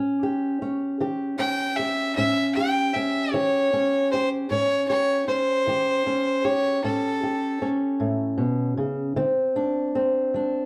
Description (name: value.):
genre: acoustic country blues, solo or duo.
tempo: 51 BPM (dotted quarters).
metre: 12/8.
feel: straight.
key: A mixolydian.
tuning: A4 = 440 Hz.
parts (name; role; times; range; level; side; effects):
fingerpicked old ladder-braced acoustic guitar; accompaniment; 0.0-10.7 s; A2 to G4; -27 LUFS; equal; none.
clear fiddle; melody; 1.4-7.7 s; A4 to G5; -25 LUFS; equal; plate reverb.
room: wet studio reverb, RT60 0.6 s.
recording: heard from further back in the room.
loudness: -24 LUFS.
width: mono.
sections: 0.0-10.7 A section.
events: none.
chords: 0.0 A7; 9.2 D7.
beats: 1.00 2.16 3.33 | 4.50 5.66 6.83 8.00 | 9.17 10.34.